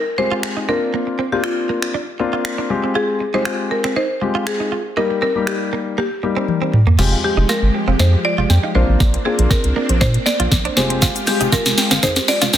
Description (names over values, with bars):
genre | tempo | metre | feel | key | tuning
dance-pop | 119 BPM | 4/4 | straight | F dorian | A4 = 441 Hz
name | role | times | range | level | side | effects
buzzing marimba with medium hard mallets | melody | 0.0-12.6 s | F4 to D5 | -22 LUFS | left 1 dB | dub echo
direct-recorded clean electric guitar | riff | 0.0-12.6 s | Bb3 to F4 | -26 LUFS | right 6 dB | lush chorus
warm grand piano | accompaniment | 0.2-12.0 s | G3 to G4 | -22 LUFS | left 4 dB | sidechain pumping
smooth R&B drum kit | drums | 0.4-12.6 s | crash cymbal, finger snaps, hi-hat, kick drum, shaker, snare drum, toms | -18 LUFS | equal | soft clipping on snare
string machine, violas | sustained chords | 7.0-12.6 s | F3 to G4 | -25 LUFS | right 1 dB | ensemble chorus, sidechain pumping
soft round pluck | arpeggios | 7.0-12.6 s | Ab3 to G5 | -28 LUFS | right 4 dB | chorus, sidechain pumping, dub echo
round analog bass | bass | 7.0-12.6 s | F1 to Bb2 | -16 LUFS | equal | sidechain pumping
tube shaker | percussion | 11.0-12.6 s | none | -33 LUFS | left 8 dB | none
room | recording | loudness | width
moderate digital room reverb, RT60 1.1 s | dense, heavily limited modern master, high-pass filter | -15 LUFS | side -11 dB against mid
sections
0.0-7.0 A section; 7.0-12.6 B section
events
drum fill 6.5-7.0, 7.0-12.6; build-up 7.0-12.6; filter sweep 7.0-12.6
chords
0.0 Fmadd9; 0.7 Bbadd9; 2.7 Fmadd9; 5.0 Eb; 7.0 Fmadd9; 8.8 Bbadd9; 10.8 Fmadd9